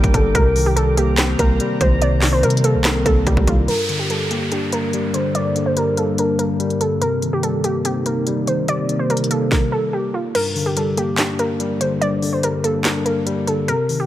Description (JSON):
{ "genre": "hip hop, trap", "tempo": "144 BPM", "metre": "4/4", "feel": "half-time", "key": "G minor", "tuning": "A4 = 437 Hz", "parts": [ { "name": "warbly dusty pluck", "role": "melody", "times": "0.0-14.1 s", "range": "F4 to D5", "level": "-21 LUFS", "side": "right 1 dB", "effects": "chorus, low-pass filter, digital delay" }, { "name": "tine electric piano", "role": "accompaniment", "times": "0.0-14.1 s", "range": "G2 to D4", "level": "-21 LUFS", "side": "left 2 dB", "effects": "overdrive, low-pass filter" }, { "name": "deep dark ambient pad", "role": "sustained chords", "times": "0.0-9.5 s", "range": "G2 to D6", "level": "-28 LUFS", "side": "right 2 dB", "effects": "chorus, built-in reverb, low-pass filter" }, { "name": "hard-hitting 808-style bass", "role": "bass", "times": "0.0-3.7 s", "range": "G1 to C3", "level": "-19 LUFS", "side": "equal", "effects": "none" }, { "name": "trap drum kit", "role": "drums", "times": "0.0-14.0 s", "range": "crash cymbal, handclaps, hi-hat, kick drum, snare drum", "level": "-21 LUFS", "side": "equal", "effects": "none" }, { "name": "downlifter", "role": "sound effects", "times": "3.7-7.0 s", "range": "none", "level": "-28 LUFS", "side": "right 1 dB", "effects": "none" } ], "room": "digital ambience", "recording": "none", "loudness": "-16 LUFS", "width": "side -13 dB against mid", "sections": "0.0-3.7 A section; 3.7-10.3 B section; 10.3-14.1 C section", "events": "filter sweep 3.7-10.3; kick muted 10.3-14.1", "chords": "0.3 Cm7; 3.7 Gm; 7.0 Cm7; 10.3 Gm", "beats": "| 0.35 0.77 1.18 1.60 | 2.02 2.43 2.85 3.27 | 3.68 4.10 4.52 4.93 | 5.35 5.77 6.18 6.60 | 7.02 7.43 7.85 8.27 | 8.68 9.10 9.52 9.93 | 10.35 10.77 11.18 11.60 | 12.02 12.43 12.85 13.27 | 13.68" }